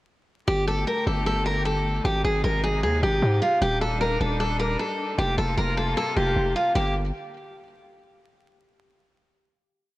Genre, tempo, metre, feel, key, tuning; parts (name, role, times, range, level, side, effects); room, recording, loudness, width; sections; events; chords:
hip hop, trap; 153 BPM; 4/4; half-time; G minor; A4 = 440 Hz
picked steel-string acoustic guitar; melody; 0.5-6.9 s; F4 to Bb4; -24 LUFS; equal; low-pass filter, digital delay
clear symphonic string section; sustained chords; 0.5-6.9 s; C3 to G4; -33 LUFS; left 1 dB
distorted 808-style bass; bass; 0.5-7.1 s; Eb1 to Ab2; -25 LUFS; equal; distortion
light reverb, studio reverb; vinyl crackle; -22 LUFS; side -17 dB against mid
0.5-6.8 hook; 6.8-8.3 final chord
0.5 Gsus2; 2.0 Ab; 3.6 Ebmaj7; 5.2 Fsus4; 6.8 Gm